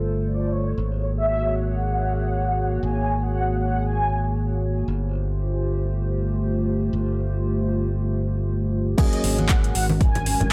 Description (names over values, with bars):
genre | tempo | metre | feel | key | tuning
deep house | 117 BPM | 4/4 | swing 57% on 16ths | unclear | A4 = 439 Hz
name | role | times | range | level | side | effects
hollow soft pad | sustained chords | 0.0-10.5 s | G#3 to C#5 | -30 LUFS | equal | chorus, sidechain pumping
modern bright fingered electric bass | bass | 0.0-10.5 s | G1 to G#1 | -26 LUFS | equal | sidechain pumping, low-pass filter
mellow horn-like synth lead | melody | 0.3-4.6, 9.0-10.5 s | C#5 to G#5 | -30 LUFS | equal | ensemble chorus, analog delay
percussive organ stab | stabs | 9.0-9.8 s | F#3 to G#4 | -30 LUFS | equal | chorus, sidechain pumping, tape echo
deep house drum kit | drums | 9.0-10.5 s | crash cymbal, handclaps, hi-hat | -30 LUFS | equal | overdrive
electronic kick drum | drums | 9.0-10.1 s | none | -22 LUFS | equal | overdrive
congas | percussion | 9.0-10.5 s | none | -30 LUFS | equal | none
room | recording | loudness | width
moderate echo chamber reverb, RT60 1.4 s, digital ambience | none | -23 LUFS | mono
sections
0.0-9.0 A section; 9.0-10.5 B section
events
drop 9.0-10.5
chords
0.0 G9sus4; 0.8 G#9sus4; 4.9 G9sus4; 9.0 G#9sus4